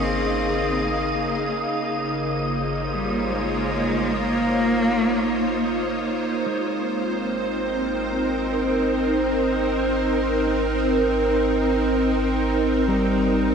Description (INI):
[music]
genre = ambient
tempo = free time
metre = none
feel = none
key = Ab major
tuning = A4 = 441 Hz
[part]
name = clear cello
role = melody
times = 0.0-5.7 s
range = G3 to C4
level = -25 LUFS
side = left 1 dB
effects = diffuse ambient delay
[part]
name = evolving wavetable pad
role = sustained chords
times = 0.0-13.5 s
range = Db3 to F5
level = -22 LUFS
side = right 1 dB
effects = ensemble chorus, built-in reverb
[part]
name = warm sub bass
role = bass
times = 0.0-13.5 s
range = Ab1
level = -32 LUFS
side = left 1 dB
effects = none
[part]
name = bowed-like drone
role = drone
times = 0.0-13.5 s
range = Bb3 to Eb4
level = -29 LUFS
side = equal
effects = built-in reverb
[part]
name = wind-like tuned noise texture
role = texture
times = 0.0-6.5 s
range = Eb6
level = -32 LUFS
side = right 2 dB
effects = built-in reverb
[part]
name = mellow electric guitar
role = arpeggios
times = 6.5-13.5 s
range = G3 to Bb5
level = -31 LUFS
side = left 1 dB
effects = diffuse ambient delay
[sound]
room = wet lush hall reverb, RT60 3.0 s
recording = dark, warm production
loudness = -20 LUFS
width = side -6 dB against mid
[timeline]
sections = 0.0-6.5 A section; 6.5-13.5 B section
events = fade-out on sub bass 0.0-6.5; fade-in on clean electric guitar 6.5-13.5; fade-in on sub bass 6.5-13.5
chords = 0.0 Db6/Ab; 6.5 Ab